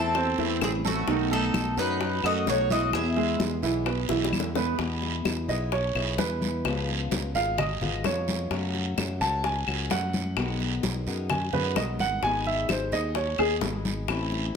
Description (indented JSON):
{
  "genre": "latin, Cuban son and guajira",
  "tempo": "129 BPM",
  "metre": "4/4",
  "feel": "straight",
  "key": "E major",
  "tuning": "A4 = 440 Hz",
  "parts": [
    { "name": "Cuban tres", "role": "melody", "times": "0.0-3.4 s", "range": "F#4 to E5", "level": "-28 LUFS", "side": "left 1 dB", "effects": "slapback echo, plate reverb" },
    { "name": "bright trumpet", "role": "second line", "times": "0.0-3.4 s", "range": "A3 to G#4", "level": "-36 LUFS", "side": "right 5 dB", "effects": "none" },
    { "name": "picked steel-string acoustic guitar", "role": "accompaniment", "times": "0.0-14.6 s", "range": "B2 to G#4", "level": "-34 LUFS", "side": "left 4 dB", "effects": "none" },
    { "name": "warm baby grand piano", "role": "arpeggios", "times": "0.0-13.5 s", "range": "D#3 to A5", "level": "-28 LUFS", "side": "right 3 dB", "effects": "none" },
    { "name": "fingered electric bass", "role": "bass", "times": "0.0-14.5 s", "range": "G#1 to F#2", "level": "-31 LUFS", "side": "equal", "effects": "none" },
    { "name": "bongos", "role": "percussion", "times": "0.1-14.6 s", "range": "none", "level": "-34 LUFS", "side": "left 8 dB", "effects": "none" },
    { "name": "claves", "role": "percussion", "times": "0.2-14.3 s", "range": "none", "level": "-34 LUFS", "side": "left 10 dB", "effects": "none" },
    { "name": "congas", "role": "percussion", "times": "0.2-14.6 s", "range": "none", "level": "-34 LUFS", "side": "left 2 dB", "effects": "none" },
    { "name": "guiro", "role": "percussion", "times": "0.2-14.5 s", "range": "none", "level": "-36 LUFS", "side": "right 8 dB", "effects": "none" }
  ],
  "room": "moderate large studio reverb, RT60 0.9 s",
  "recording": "none",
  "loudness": "-24 LUFS",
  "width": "side -6 dB against mid",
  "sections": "0.0-4.8 A section; 4.8-14.6 B section",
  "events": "drum fill 4.1-4.8; grand piano solo 4.8-14.6",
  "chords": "0.0 Am; 1.1 B7; 2.9 E; 6.7 C#7; 8.5 F#m; 10.4 B6; 12.2 G#m",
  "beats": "0.15 0.61 | 1.08 1.54 2.01 2.47 | 2.94 3.40 3.87 4.33 | 4.79 5.26 5.72 6.19 | 6.65 7.12 7.58 8.05 | 8.51 8.98 9.44 9.91 | 10.37 10.84 11.30 11.77 | 12.23 12.70 13.16 13.62 | 14.09 14.55"
}